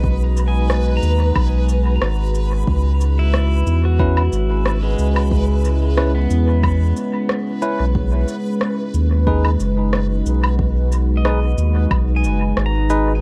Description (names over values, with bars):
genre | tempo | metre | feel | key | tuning
ambient dub | 91 BPM | 4/4 | swing 53% on 16ths | unclear | A4 = 440 Hz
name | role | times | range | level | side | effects
deep dark ambient pad | sustained chords | 0.0-13.2 s | G#3 to B4 | -27 LUFS | equal | chorus, built-in reverb
pedal steel guitar | arpeggios | 0.0-13.2 s | G#3 to A#5 | -30 LUFS | equal | tape echo
warm sub bass | bass | 0.0-13.2 s | F#1 to E2 | -19 LUFS | equal | tube saturation
electronic kick drum | drums | 0.0-12.0 s | none | -24 LUFS | equal | none
backwards swelling texture | texture | 0.0-13.2 s | B4 | -33 LUFS | equal | built-in reverb
electronic shaker, rim click and woodblock | drums | 0.4-13.0 s | none | -28 LUFS | equal | dub echo
bell-like tine electric piano | stabs | 4.0-13.1 s | C#4 to B4 | -28 LUFS | equal | dub echo
room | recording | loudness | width
little or no reverb | echo-heavy mix, vinyl crackle | -18 LUFS | mono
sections
0.0-13.2 A section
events
none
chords
0.0 B6; 2.7 C#m7; 8.0 B6